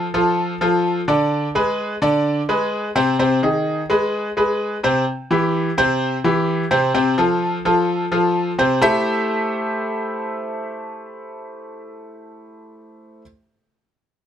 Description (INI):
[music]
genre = latin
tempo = 128 BPM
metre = 4/4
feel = straight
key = A minor from 5.1 s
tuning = A4 = 440 Hz
[part]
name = bright concert grand piano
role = solo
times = 0.0-13.2 s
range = C3 to E5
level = -17 LUFS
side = equal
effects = none
[sound]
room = light reverb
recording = close, detailed microphones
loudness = -17 LUFS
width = side -9 dB against mid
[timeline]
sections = 0.0-5.1 A section; 5.1-8.8 B section; 8.8-12.6 C section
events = none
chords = 0.0 Dm; 1.3 G#dim; 3.2 G#; 4.1 G#m; 5.1 C; 6.9 F/C; 8.8 Am7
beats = 0.38 0.85 | 1.31 1.78 2.25 2.72 | 3.19 3.66 4.13 4.59 | 5.06 5.53 6.00 6.47 | 6.94 7.41 7.88 8.35 | 8.82 9.29 9.76 10.23 | 10.70 11.16 11.63 12.10